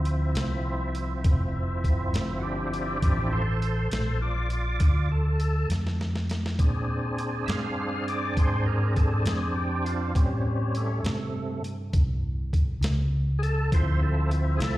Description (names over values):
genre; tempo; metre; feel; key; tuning
slow blues; 67 BPM (dotted quarters); 12/8; straight; D minor; A4 = 440 Hz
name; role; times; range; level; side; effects
overdriven tonewheel organ; sustained chords; 0.0-14.8 s; B#2 to F5; -30 LUFS; equal; slow rotary speaker, chorus vibrato
fingered electric bass; bass; 0.0-14.8 s; F1 to Bb2; -26 LUFS; equal; none
boom bap sampler-style drum kit; drums; 0.1-14.8 s; hi-hat, kick drum, snare drum; -26 LUFS; equal; none
room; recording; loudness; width
little or no reverb; live gig heard through the venue's PA, recital hall reverb; -24 LUFS; side -16 dB against mid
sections
0.0-14.8 A section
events
tonewheel organ solo 0.0-14.8; drum fill 5.7-6.6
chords
0.0 Dm7; 6.6 Bb7; 10.2 A7#9; 13.7 Dm7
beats
0.36 1.25 2.14 | 3.03 3.92 4.81 5.70 | 6.59 7.48 8.37 9.26 | 10.15 11.04 11.93 12.83 | 13.72 14.61